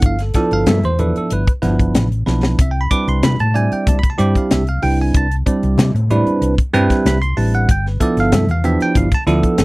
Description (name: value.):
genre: electric jazz fusion.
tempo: 94 BPM.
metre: 4/4.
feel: straight.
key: unclear.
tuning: A4 = 439 Hz.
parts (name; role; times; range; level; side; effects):
bell-like tine electric piano; accompaniment; 0.0-9.6 s; F3 to D6; -17 LUFS; right 2 dB; phaser.
hollow-body short-scale fingered electric bass; bass; 0.0-9.6 s; G1 to C3; -17 LUFS; equal; none.
tight funk drum kit; drums; 0.0-9.6 s; hi-hat, kick drum, snare drum; -17 LUFS; left 1 dB; none.
congas; percussion; 0.0-9.6 s; none; -25 LUFS; left 3 dB; none.
room: little or no reverb.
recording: dry, close 1970s-style studio recording.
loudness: -13 LUFS.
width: side -22 dB against mid.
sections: 0.0-9.6 A section.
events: drum fill 2.3-2.6.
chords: 0.0 G13; 2.6 Cmaj9; 7.7 G13.